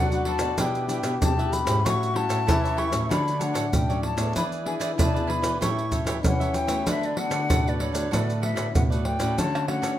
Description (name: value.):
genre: samba and choro.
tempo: 96 BPM.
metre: 4/4.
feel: straight.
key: D major.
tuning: A4 = 441 Hz.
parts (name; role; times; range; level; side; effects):
bright wooden flute; melody; 0.0-10.0 s; C#5 to C#6; -29 LUFS; left 3 dB; none.
mellow trombone; second line; 0.0-10.0 s; A3 to G4; -31 LUFS; left 3 dB; none.
cavaquinho; accompaniment; 0.0-9.9 s; D4 to E5; -34 LUFS; right 7 dB; none.
nylon-string guitar; accompaniment; 0.0-10.0 s; A2 to G#4; -33 LUFS; left 4 dB; none.
nylon-string guitar; bass; 0.0-10.0 s; G#2 to F#3; -30 LUFS; right 1 dB; none.
maracas, pandeiro, surdo and tamborim; percussion; 0.1-10.0 s; none; -26 LUFS; right 1 dB; none.
room: moderate large studio reverb, RT60 0.9 s.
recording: minimal, uncompressed stereo recording.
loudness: -22 LUFS.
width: side -12 dB against mid.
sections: 0.0-9.4 A section.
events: none.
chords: 0.0 Bm7; 0.6 Em7/B; 1.8 A7; 3.1 Dmaj7; 4.4 E7; 5.6 A7; 6.9 D6; 9.4 Dmaj7.